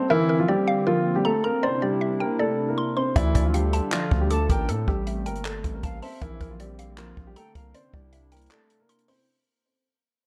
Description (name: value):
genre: hip hop, trap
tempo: 157 BPM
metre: 4/4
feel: half-time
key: unclear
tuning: A4 = 440 Hz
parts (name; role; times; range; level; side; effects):
- dark baby grand piano; melody; 0.0-9.3 s; E3 to C5; -27 LUFS; equal; none
- mallet-like synth pluck; accompaniment; 0.0-9.3 s; A4 to D6; -33 LUFS; equal; chorus, phaser
- hollow soft pad; sustained chords; 0.0-9.3 s; C3 to A4; -34 LUFS; equal; chorus
- distorted 808-style bass; bass; 3.2-8.5 s; G1 to A2; -30 LUFS; equal; distortion
- compact cocktail drum kit; drums; 3.2-9.2 s; handclaps, hi-hat, kick drum; -29 LUFS; equal; none
- silver concert flute; second line; 4.3-7.7 s; E5 to A5; -39 LUFS; equal; none
room: light reverb, small room ambience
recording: dark, warm production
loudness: -24 LUFS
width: mono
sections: 0.0-9.3 A section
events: fade-out 0.0-9.3; break 8.5-9.3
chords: 0.1 Bbadd9; 1.6 Cadd9; 3.2 Dm; 4.7 Am7; 6.2 Bbadd9; 7.7 Cadd9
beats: | 0.10 0.48 0.87 1.25 | 1.63 2.01 2.40 2.78 | 3.16 3.54 3.92 4.31 | 4.69 5.07 5.45 5.83 | 6.22 6.60 6.98 7.36 | 7.75 8.13 8.51 8.89